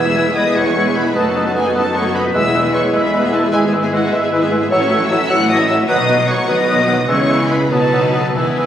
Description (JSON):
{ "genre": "classical, dramatic, fast romantic movement for symphony orchestra", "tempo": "101 BPM (dotted quarters)", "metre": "6/8", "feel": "rubato", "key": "E major", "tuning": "A4 = 440 Hz", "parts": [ { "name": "warm symphonic violin section", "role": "melody", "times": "0.0-8.7 s", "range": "E5 to F#6", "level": "-24 LUFS", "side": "left 2 dB", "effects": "none" }, { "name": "flute section", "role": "second line", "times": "0.0-8.7 s", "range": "E4 to F#5", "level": "-22 LUFS", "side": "left 3 dB", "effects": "none" }, { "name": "mellow clarinet", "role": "second line", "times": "0.0-8.7 s", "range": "B4 to C#5", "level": "-26 LUFS", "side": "right 1 dB", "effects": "none" }, { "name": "rich symphonic violin section", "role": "second line", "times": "0.0-8.7 s", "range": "C#4 to E5", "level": "-24 LUFS", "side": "left 1 dB", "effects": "none" }, { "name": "warm oboe", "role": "second line", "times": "0.0-8.7 s", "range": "D#5 to G#5", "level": "-22 LUFS", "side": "equal", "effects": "none" }, { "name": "dark bassoon", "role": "accompaniment", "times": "0.0-8.7 s", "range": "E3 to B3", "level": "-23 LUFS", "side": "right 2 dB", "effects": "none" }, { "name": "rich symphonic viola section", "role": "accompaniment", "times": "0.0-8.7 s", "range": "D#3 to G#4", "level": "-21 LUFS", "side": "right 1 dB", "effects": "none" }, { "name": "dark French horn section", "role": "sustained chords", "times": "0.0-8.7 s", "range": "D#3 to E4", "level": "-23 LUFS", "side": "left 2 dB", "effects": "none" }, { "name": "concert harp", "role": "arpeggios", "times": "0.0-8.7 s", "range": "E2 to B5", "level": "-25 LUFS", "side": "left 6 dB", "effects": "none" }, { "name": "warm symphonic cello section", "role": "bass", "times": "0.0-8.7 s", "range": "E2 to C#3", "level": "-22 LUFS", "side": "right 3 dB", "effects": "none" }, { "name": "warm symphonic double bass section", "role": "bass", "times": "0.0-8.7 s", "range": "E1 to C#2", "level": "-25 LUFS", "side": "right 2 dB", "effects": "none" } ], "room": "wet concert hall reverb, RT60 2.0 s", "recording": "recorded on a phone in the room, studio reverb", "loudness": "-13 LUFS", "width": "side -10 dB against mid", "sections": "0.0-8.7 A section", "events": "none", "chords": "0.0 E; 1.2 B7/F#; 2.4 E; 3.5 E/G#; 4.7 F#m7/A; 5.9 B; 7.1 C#m7; 7.7 B7" }